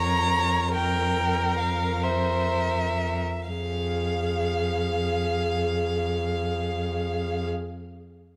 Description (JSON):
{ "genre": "classical, slow romantic movement for string quartet", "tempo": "38-51 BPM (dotted quarters)", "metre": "6/8", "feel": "rubato", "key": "F minor", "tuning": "A4 = 440 Hz", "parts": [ { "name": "dark violin", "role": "melody", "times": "0.0-7.5 s", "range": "E5 to Bb5", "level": "-33 LUFS", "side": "equal", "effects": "none" }, { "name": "warm violin", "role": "second line", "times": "0.0-7.5 s", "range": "Bb4 to F5", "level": "-33 LUFS", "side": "equal", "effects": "none" }, { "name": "warm viola", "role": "accompaniment", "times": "0.0-7.5 s", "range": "Ab4 to Db5", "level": "-32 LUFS", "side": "equal", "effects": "none" }, { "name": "rich cello", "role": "bass", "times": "0.0-7.5 s", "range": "F2", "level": "-31 LUFS", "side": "equal", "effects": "none" } ], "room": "light reverb", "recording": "close, detailed microphones", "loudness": "-26 LUFS", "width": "mono", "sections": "0.0-3.5 A section; 3.5-8.4 B section", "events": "slowing down 0.0-3.5", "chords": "0.0 Bbm/F; 3.5 Fm" }